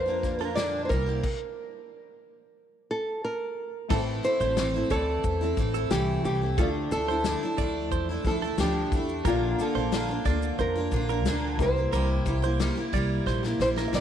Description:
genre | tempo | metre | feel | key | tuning
acoustic pop | 90 BPM | 4/4 | straight | unclear | A4 = 440 Hz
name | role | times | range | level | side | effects
nylon-string guitar | melody | 0.0-14.0 s | F4 to E5 | -30 LUFS | equal | none
dark upright piano | accompaniment | 0.0-14.0 s | A3 to E5 | -39 LUFS | left 12 dB | none
picked steel-string acoustic guitar | accompaniment | 0.0-14.0 s | A2 to G4 | -30 LUFS | equal | double-tracked left and right
direct-recorded clean electric guitar | arpeggios | 0.0-14.0 s | A4 to D5 | -36 LUFS | right 11 dB | none
upright bass | bass | 0.0-14.0 s | A1 to F2 | -30 LUFS | equal | none
natural country drum kit | drums | 0.2-14.0 s | crash cymbal, kick drum, shaker, snare drum | -32 LUFS | left 2 dB | none
room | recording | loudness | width
moderate plate reverb, RT60 2.6 s | 1960s-style stereo with parts hard left and right | -24 LUFS | side -9 dB against mid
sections
0.0-3.9 A section; 3.9-14.0 B section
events
stop 1.2-3.9; drum fill 13.3-14.0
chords
0.0 Bb; 0.9 C7; 3.9 Am; 6.6 Dmadd9; 9.3 Bb; 11.6 C7

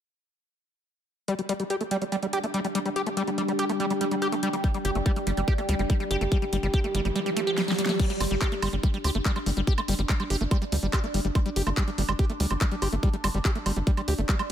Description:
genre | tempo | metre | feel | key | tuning
psychedelic trance | 143 BPM | 4/4 | straight | unclear | A4 = 440 Hz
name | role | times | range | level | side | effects
overtone-sweeping drone | sustained chords | 3.1-14.5 s | G3 to G4 | -33 LUFS | equal | chorus, built-in reverb, sidechain pumping
screaming distorted acid line | riff | 1.3-14.4 s | G3 to G4 | -29 LUFS | moving between left 3 dB and right 4 dB | distortion, chorus, auto-pan, sidechain pumping, digital delay
big-room dance drum kit | drums | 1.3-14.5 s | crash cymbal, handclaps, hi-hat, snare drum, woodblock | -32 LUFS | right 2 dB | overdrive
deep dark ambient pad | texture | 2.3-8.0 s | D4 to G5 | -34 LUFS | right 1 dB | chorus, built-in reverb, sidechain pumping
electronic kick drum | drums | 4.6-14.4 s | none | -24 LUFS | equal | none
riser | sound effects | 6.5-8.0 s | none | -35 LUFS | right 1 dB | none
tight sequencer bass | bass | 4.8-14.2 s | G1 to D2 | -27 LUFS | equal | tube saturation
room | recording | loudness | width
light reverb, digital ambience | none | -24 LUFS | side -10 dB against mid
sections
1.3-8.0 A section; 8.0-14.5 B section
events
filter sweep on acid bass 1.3-8.0; filter sweep on synth drone 1.3-8.0; riser 6.5-8.0; kick drops out 7.2-8.0; drum fill 7.6-8.0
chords
1.3 G5

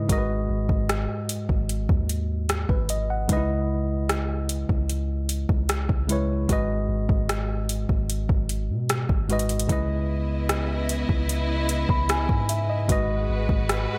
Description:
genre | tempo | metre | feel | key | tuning
contemporary R&B | 75 BPM | 4/4 | straight | C# minor | A4 = 440 Hz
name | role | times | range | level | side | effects
tine electric piano | accompaniment | 0.0-14.0 s | G#2 to B5 | -30 LUFS | equal | overdrive
long sustained 808-style bass | bass | 0.0-13.9 s | G#1 to B2 | -30 LUFS | equal | none
smooth R&B drum kit | drums | 0.1-13.9 s | hi-hat, kick drum, rim click | -28 LUFS | equal | none
warm studio string section | sustained chords | 9.7-14.0 s | C#3 to D#5 | -33 LUFS | equal | sidechain pumping
room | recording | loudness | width
digital ambience | none | -25 LUFS | mono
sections
0.0-14.0 A section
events
none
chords
0.1 G#m7; 3.3 C#m9; 6.5 G#m7; 9.7 C#m9; 12.9 G#m7

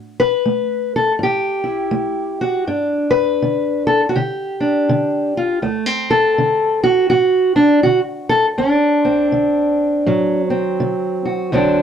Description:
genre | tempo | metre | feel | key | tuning
acoustic country blues, solo or duo | 81 BPM | 4/4 | swing 61% on 8ths | D mixolydian | A4 = 440 Hz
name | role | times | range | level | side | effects
fingerpicked steel-string acoustic guitar | solo | 0.0-11.8 s | D2 to B4 | -14 LUFS | equal | none
room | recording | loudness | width
moderate studio reverb, RT60 0.6 s | dark, warm production | -14 LUFS | side -8 dB against mid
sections
0.0-11.5 A section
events
none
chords
0.0 A5; 2.7 G; 5.6 D7

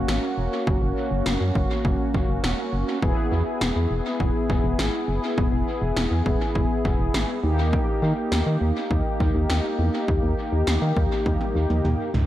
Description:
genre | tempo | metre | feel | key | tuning
synth-pop | 102 BPM | 4/4 | straight | unclear | A4 = 441 Hz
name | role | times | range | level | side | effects
mellow synth brass | accompaniment | 0.0-12.1 s | A#3 to G#4 | -26 LUFS | left 1 dB | chorus, dub echo
solid FM bass | bass | 0.0-12.2 s | E1 to D#3 | -24 LUFS | equal | none
80s electronic pad drums | drums | 0.1-12.3 s | kick drum, snare drum, toms | -26 LUFS | equal | gated reverb on snare and toms, dub echo
room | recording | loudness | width
light reverb, digital ambience | echo-heavy mix | -21 LUFS | side -13 dB against mid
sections
0.0-12.3 A section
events
drum fill 11.3-12.3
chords
0.0 F#; 3.0 E; 7.4 D#

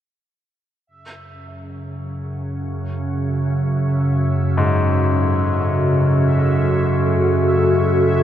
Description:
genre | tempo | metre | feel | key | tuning
dark ambient drone | free time | none | none | F# minor | A4 = 440 Hz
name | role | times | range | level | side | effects
organ-like drone | drone | 1.7-8.2 s | F#2 to C#3 | -18 LUFS | right 1 dB | ensemble chorus, built-in reverb
bubbling stepped-filter texture | texture | 0.9-8.2 s | E5 | -32 LUFS | left 1 dB | chorus, built-in reverb
dark analog pad | sustained chords | 4.2-8.2 s | F#4 to A4 | -22 LUFS | left 1 dB | chorus
bright grand piano | arpeggios | 4.6-8.2 s | G#2 | -23 LUFS | left 2 dB | diffuse ambient delay
room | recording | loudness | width
wet cathedral reverb, RT60 6.7 s | in a vast, echoing space | -16 LUFS | side -10 dB against mid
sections
0.9-8.2 A section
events
fade-in on synth texture 0.9-8.2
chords
0.9 F#madd9

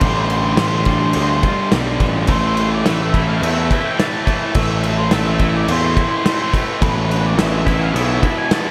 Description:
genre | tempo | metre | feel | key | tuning
post-rock | 106 BPM | 4/4 | straight | A minor | A4 = 439 Hz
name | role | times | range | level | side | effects
octave-fuzz lead guitar | melody | 0.0-8.7 s | B4 to A5 | -25 LUFS | equal | distortion, tape echo
twangy electric guitar | arpeggios | 0.0-8.7 s | A2 to F4 | -29 LUFS | equal | none
tight distorted guitar | riff | 0.0-8.7 s | E2 to A3 | -24 LUFS | equal | distortion
fuzz picked electric bass | bass | 0.0-8.2 s | A1 to E2 | -21 LUFS | equal | overdrive
loose indie drum kit | drums | 0.0-8.6 s | crash cymbal, kick drum, snare drum | -22 LUFS | equal | none
room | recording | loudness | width
moderate lush hall reverb, RT60 1.9 s, small room reverb | dreamy mix soaked in reverb | -17 LUFS | mono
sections
0.0-8.7 A section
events
none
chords
0.0 G7sus4/A; 2.3 Am; 6.8 E7/A

